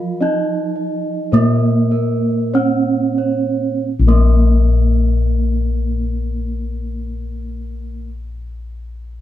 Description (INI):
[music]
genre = Javanese gamelan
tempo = 43-57 BPM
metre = 4/4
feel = straight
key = unclear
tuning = A4 = 440 Hz
[part]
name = gamelan-type bronze metallophone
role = melody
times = 0.0-8.1 s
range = Bb3 to F4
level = -21 LUFS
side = right 2 dB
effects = none
[part]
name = gamelan-type bronze metallophone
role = accompaniment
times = 0.0-8.1 s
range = F3 to Bb3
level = -23 LUFS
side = right 3 dB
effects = none
[part]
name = gamelan-type bossed gongs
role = arpeggios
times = 0.0-8.1 s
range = Bb4 to Eb5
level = -28 LUFS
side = left 2 dB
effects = none
[part]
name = gamelan-type bronze metallophone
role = arpeggios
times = 0.0-8.1 s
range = Bb4 to F5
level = -27 LUFS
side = right 4 dB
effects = none
[part]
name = gamelan-type bossed gongs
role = bass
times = 0.0-8.0 s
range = Bb1 to F4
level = -17 LUFS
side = left 2 dB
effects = none
[sound]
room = light reverb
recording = band playing live in one room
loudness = -14 LUFS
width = side -12 dB against mid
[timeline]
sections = 0.0-3.9 A section; 3.9-9.2 B section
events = slowing down 0.0-3.9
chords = none